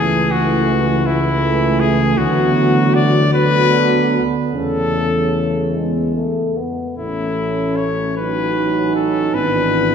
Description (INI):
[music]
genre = classical, hymn-like piece for brass band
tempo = 50 BPM (dotted quarters)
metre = 6/8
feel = uneven beats, rubato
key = A major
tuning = A4 = 440 Hz
[part]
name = clear cornet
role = melody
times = 0.0-9.9 s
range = E4 to D5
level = -19 LUFS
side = left 4 dB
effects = none
[part]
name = mellow French horn section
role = second line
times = 0.0-9.9 s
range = A3 to D#4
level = -21 LUFS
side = right 6 dB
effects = none
[part]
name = warm euphonium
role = accompaniment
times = 0.0-9.9 s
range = E3 to B3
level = -22 LUFS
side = left 1 dB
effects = none
[part]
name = warm trombone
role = accompaniment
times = 0.0-9.9 s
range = C#3 to C#4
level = -25 LUFS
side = right 2 dB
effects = none
[part]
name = mellow tuba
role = bass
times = 0.0-9.9 s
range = G#1 to E2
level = -20 LUFS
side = left 1 dB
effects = none
[sound]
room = wet concert hall reverb, RT60 2.2 s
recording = heard from further back in the room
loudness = -14 LUFS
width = side -7 dB against mid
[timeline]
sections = 0.0-9.9 A section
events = none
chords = 0.0 A/C#; 2.2 Bm/D; 4.5 A/E; 5.8 E; 7.0 A; 8.2 B7/A; 9.3 E7/G#